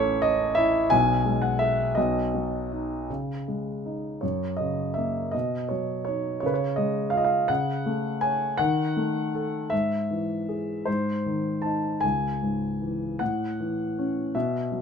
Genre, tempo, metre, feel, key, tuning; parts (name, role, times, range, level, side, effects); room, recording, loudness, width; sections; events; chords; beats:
classical, lyrical solo piano; 51-59 BPM (dotted quarters); 6/8; rubato; C# minor from 3.1 s; A4 = 440 Hz
warm concert grand piano; solo; 0.0-14.8 s; A1 to A5; -24 LUFS; equal
light reverb; -24 LUFS; side -6 dB against mid
0.0-3.1 A section; 3.1-14.8 B section
0.0 A; 0.9 Eadd9/B; 2.0 B; 3.1 C#sus2; 4.2 F#; 5.3 B; 6.4 C#; 7.5 F#m/C#; 8.6 D#dim; 9.7 E/G#; 10.9 G#; 12.0 C#m; 13.2 A
| 0.91 1.97 | 3.09 4.23 | 5.34 6.43 | 7.50 8.59 | 9.72 10.87 | 12.04 13.21 | 14.35